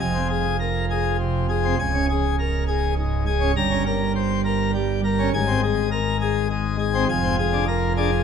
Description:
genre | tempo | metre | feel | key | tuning
classical, organ toccata | 102 BPM | 3/4 | straight | F minor | A4 = 438 Hz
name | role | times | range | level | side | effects
pipe organ, plenum | solo | 0.0-8.2 s | Db1 to Bb5 | -20 LUFS | equal | none
room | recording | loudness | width
wet concert hall reverb, RT60 1.9 s | none | -20 LUFS | side -7 dB against mid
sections
0.0-8.2 A section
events
none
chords
0.0 Fm; 1.8 Db5; 3.6 Gdim; 5.3 Abadd9; 7.1 Dm7b5/F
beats
| 0.01 0.60 1.20 | 1.79 2.38 2.97 | 3.56 4.15 4.74 | 5.33 5.92 6.51 | 7.09 7.68

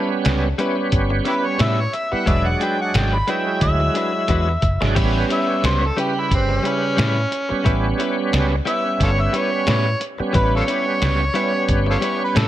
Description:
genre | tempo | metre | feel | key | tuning
straight-eighth soul blues | 89 BPM | 4/4 | swing 56% on 16ths | A mixolydian | A4 = 440 Hz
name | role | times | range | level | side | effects
overdriven harmonica | melody | 0.0-12.5 s | C4 to B5 | -23 LUFS | equal | none
bright tonewheel organ | accompaniment | 0.0-12.5 s | C#3 to B4 | -22 LUFS | right 3 dB | slow rotary speaker, overdrive, chorus vibrato
direct-recorded clean electric guitar | stabs | 0.0-12.5 s | G3 to B4 | -28 LUFS | left 4 dB | none
lo-fi sampler-style drum kit | drums | 0.2-12.5 s | crash cymbal, hi-hat, kick drum, snare drum | -23 LUFS | equal | none
vintage muted fingered electric bass | bass | 0.3-12.5 s | E1 to A2 | -20 LUFS | equal | none
room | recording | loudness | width
light reverb | none | -17 LUFS | side -13 dB against mid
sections
0.0-5.0 A section; 5.0-12.5 B section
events
drum fill 4.3-5.0; harmonica solo 5.0-12.5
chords
0.0 A9; 2.3 E9; 5.0 A9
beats
0.26 0.93 1.61 | 2.28 2.95 3.62 4.30 | 4.97 5.64 6.31 6.99 | 7.66 8.33 9.00 9.68 | 10.35 11.02 11.69 12.36

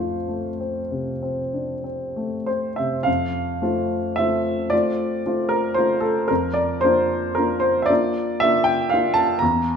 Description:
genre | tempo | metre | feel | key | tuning
classical, romantic nocturne for solo piano | 31-41 BPM (dotted quarters) | 6/8 | rubato | F major | A4 = 442 Hz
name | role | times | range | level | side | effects
warm baby grand piano | solo | 0.0-9.8 s | E2 to Bb5 | -19 LUFS | equal | none
room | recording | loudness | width
wet recital hall reverb, RT60 1.5 s | none | -19 LUFS | side -6 dB against mid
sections
0.0-3.1 A section; 3.1-9.8 A section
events
none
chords
0.0 F; 6.3 Bb/F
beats
1.22 | 3.07 4.72 | 6.30 7.89 | 9.41

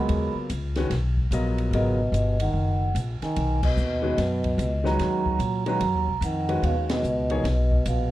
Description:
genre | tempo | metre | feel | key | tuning
modal jazz | 147 BPM | 4/4 | swing 64% on 8ths | G# dorian | A4 = 442 Hz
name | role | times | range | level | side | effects
vibraphone with soft mallets | melody | 0.0-8.1 s | D#5 to B5 | -29 LUFS | right 2 dB | none
breathy trombone | second line | 0.0-8.1 s | B2 to G#3 | -29 LUFS | right 2 dB | none
clear concert grand piano | accompaniment | 0.0-7.4 s | C#3 to D#5 | -29 LUFS | left 2 dB | none
upright bass | bass | 0.1-8.1 s | F#1 to A#2 | -25 LUFS | left 1 dB | none
open jazz drum kit | drums | 0.1-8.0 s | crash cymbal, hi-hat, kick drum, ride cymbal, snare drum | -34 LUFS | equal | none
room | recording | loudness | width
light reverb | dark, warm production | -22 LUFS | side -15 dB against mid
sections
0.0-8.1 A section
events
band accent 3.6, 6.8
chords
0.0 G#m9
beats
| 0.10 0.50 0.91 1.32 | 1.73 2.14 2.55 2.96 | 3.37 3.77 4.18 4.59 | 5.00 5.41 5.82 6.22 | 6.63 7.04 7.45 7.86

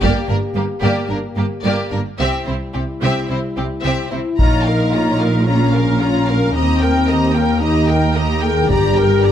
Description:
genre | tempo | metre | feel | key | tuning
cinematic, epic orchestral film score | 111 BPM | 4/4 | straight | Bb dorian | A4 = 443 Hz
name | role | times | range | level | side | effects
warm symphonic violin section | melody | 0.0-9.3 s | G4 to Bb5 | -25 LUFS | left 2 dB | none
warm symphonic violin section | second line | 0.0-9.3 s | Bb3 to G5 | -26 LUFS | left 1 dB | none
rich symphonic viola section | accompaniment | 0.0-9.3 s | Bb3 to Bb4 | -24 LUFS | right 2 dB | none
mellow French horn section | sustained chords | 0.0-9.3 s | G3 to Ab4 | -20 LUFS | left 4 dB | none
rich studio cello section | bass | 0.0-9.3 s | Eb2 to C3 | -22 LUFS | right 2 dB | none
rich symphonic double bass section | bass | 0.0-9.3 s | G1 to Eb2 | -22 LUFS | right 2 dB | none
taiko ensemble | drums | 0.0-1.1, 4.4-5.4, 8.7-9.2 s | none | -18 LUFS | equal | none
dark tuba | bass | 4.4-9.3 s | G1 to Eb2 | -23 LUFS | right 4 dB | none
room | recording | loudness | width
light reverb | close, detailed microphones | -14 LUFS | side -10 dB against mid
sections
0.0-4.4 A section; 4.4-9.3 B section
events
build-up 0.0-4.4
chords
0.0 Gm; 2.2 C; 4.4 Bbm; 6.5 Eb; 8.7 Gm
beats
| 0.02 0.56 1.09 1.64 | 2.19 2.74 3.29 3.84 | 4.39 4.93 5.47 6.01 | 6.55 7.09 7.62 8.16 | 8.70 9.24

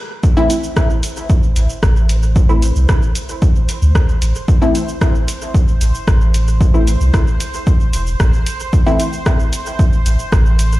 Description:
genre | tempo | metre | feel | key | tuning
dub techno | 113 BPM | 4/4 | straight | A minor | A4 = 440 Hz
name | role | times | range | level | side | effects
electronic kick drum | drums | 0.2-10.4 s | none | -14 LUFS | equal | none
punchy analog drum machine | drums | 0.2-10.8 s | hi-hat, rim click, shaker | -25 LUFS | equal | dub echo
bubbling stepped-filter texture | texture | 0.7-10.8 s | C5 | -29 LUFS | right 2 dB | chorus, built-in reverb, sidechain pumping
filtered dub chord stab | stabs | 0.4-9.0 s | E3 to E4 | -21 LUFS | left 1 dB | chorus, phaser, sidechain pumping, dub echo
pure sine sub bass | bass | 1.6-10.8 s | E1 to D2 | -14 LUFS | equal | sidechain pumping
room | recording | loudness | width
little or no reverb | played on a big sound system in a bare room, large studio reverb | -12 LUFS | side -18 dB against mid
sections
0.2-10.8 A section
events
break 0.0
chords
0.2 Am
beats
| 0.23 0.77 1.30 1.83 | 2.36 2.89 3.42 3.95 | 4.48 5.01 5.54 6.08 | 6.61 7.14 7.67 8.20 | 8.73 9.26 9.79 10.32

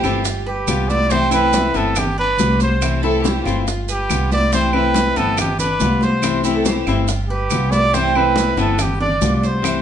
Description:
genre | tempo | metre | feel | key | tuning
latin, Cuban son and guajira | 141 BPM | 4/4 | straight | C major | A4 = 440 Hz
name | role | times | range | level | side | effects
dark studio violin section | second line | 0.0-0.4, 3.0-3.8, 6.4-7.2 s | F4 to A4 | -25 LUFS | right 1 dB | none
nylon-string guitar | accompaniment | 0.0-9.8 s | C3 to F4 | -21 LUFS | left 5 dB | none
Cuban tres | arpeggios | 0.0-9.8 s | B3 to C5 | -25 LUFS | right 7 dB | none
upright bass | bass | 0.0-9.8 s | G1 to C2 | -22 LUFS | right 1 dB | none
bongos | percussion | 0.0-9.8 s | none | -28 LUFS | left 4 dB | none
claves | percussion | 0.0-9.8 s | none | -29 LUFS | right 1 dB | none
maracas | percussion | 0.0-9.8 s | none | -29 LUFS | right 9 dB | none
congas | percussion | 0.3-9.8 s | none | -24 LUFS | equal | none
breathy trumpet | melody | 0.5-9.8 s | G4 to D5 | -20 LUFS | right 1 dB | none
room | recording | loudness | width
wet large studio reverb, RT60 0.9 s | band playing live in one room, nothing above 10.7 kHz | -15 LUFS | side -9 dB against mid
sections
0.0-9.8 A section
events
none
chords
0.3 G7; 1.1 C6; 2.0 G7; 2.8 C6; 3.7 G7; 4.5 C6; 5.4 G7; 6.2 C6; 7.1 G7; 7.9 C6; 8.8 G7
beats
0.26 0.68 | 1.11 1.54 1.97 2.39 | 2.82 3.25 3.67 4.10 | 4.53 4.95 5.38 5.81 | 6.23 6.66 7.08 7.51 | 7.94 8.36 8.79 9.22 | 9.64

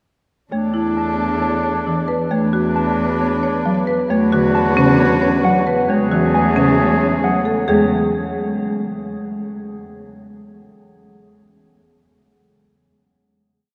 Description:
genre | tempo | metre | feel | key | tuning
classical, minimalist pattern music | 134 BPM | 4/4 | straight | E mixolydian | A4 = 440 Hz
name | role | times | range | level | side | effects
mellow electric guitar | melody | 0.5-7.9 s | C#5 to A5 | -27 LUFS | equal | none
warm oboe | second line | 0.5-7.4 s | D4 to G#4 | -26 LUFS | equal | none
folk marimba with medium mallets | accompaniment | 0.5-7.9 s | C#3 to C#4 | -22 LUFS | equal | none
warm studio violin section | sustained chords | 0.5-7.4 s | A3 to B4 | -30 LUFS | equal | none
rich cello | bass | 0.5-7.9 s | E2 | -25 LUFS | equal | none
marimba with hard mallets | arpeggios | 0.7-7.9 s | C#4 to C#5 | -24 LUFS | equal | none
room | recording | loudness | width
wet cathedral reverb, RT60 5.5 s | none | -17 LUFS | mono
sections
0.5-7.7 A section; 7.7-9.5 final chord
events
none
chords
0.5 E7sus4; 2.3 Bm7/E; 5.9 Amaj7/E; 7.7 E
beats
| 0.52 0.97 1.42 1.86 | 2.31 2.76 3.21 3.65 | 4.10 4.55 5.00 5.45 | 5.89 6.34 6.79 7.24 | 7.68

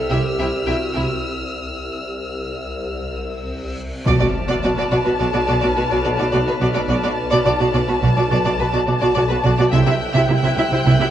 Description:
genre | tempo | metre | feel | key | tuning
cinematic, suspense film score | 106 BPM | 5/4 | straight | B phrygian | A4 = 440 Hz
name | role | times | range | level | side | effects
mellow clarinet | second line | 0.0-1.2 s | F#4 to A4 | -26 LUFS | equal | none
swarming drone | drone | 0.0-11.1 s | B1 to C2 | -26 LUFS | left 1 dB | built-in reverb
rich chamber violin section | texture | 0.0-11.1 s | B5 to G6 | -31 LUFS | left 2 dB | none
rich studio violin section | melody | 0.1-11.1 s | G5 to A5 | -25 LUFS | left 2 dB | none
clear chamber violin section | second line | 0.1-11.1 s | B4 to E5 | -24 LUFS | equal | none
rich chamber viola section | accompaniment | 0.1-11.1 s | E4 to F#4 | -22 LUFS | right 1 dB | none
dark symphonic double bass section | bass | 0.1-10.9 s | B1 to C2 | -22 LUFS | right 2 dB | none
rich studio cello section | bass | 0.1-11.1 s | B2 to C3 | -22 LUFS | right 2 dB | none
reverse cymbal and impact | sound effects | 3.8-6.9 s | none | -26 LUFS | left 1 dB | none
room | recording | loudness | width
moderate scoring stage reverb, RT60 1.8 s | worn, warbling old tape, cassette tape, warbly pitch drift | -17 LUFS | side -10 dB against mid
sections
0.0-4.1 A section; 4.1-11.1 A section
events
break 1.2-4.1; reverse cymbal 3.8; impact 4.1-6.9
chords
0.0 C; 4.1 Bm7; 9.7 C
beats
0.10 0.67 | 1.24 1.80 2.37 2.93 3.50 | 4.07 4.63 5.20 5.76 6.33 | 6.90 7.46 8.03 8.59 9.16 | 9.73 10.29 10.86

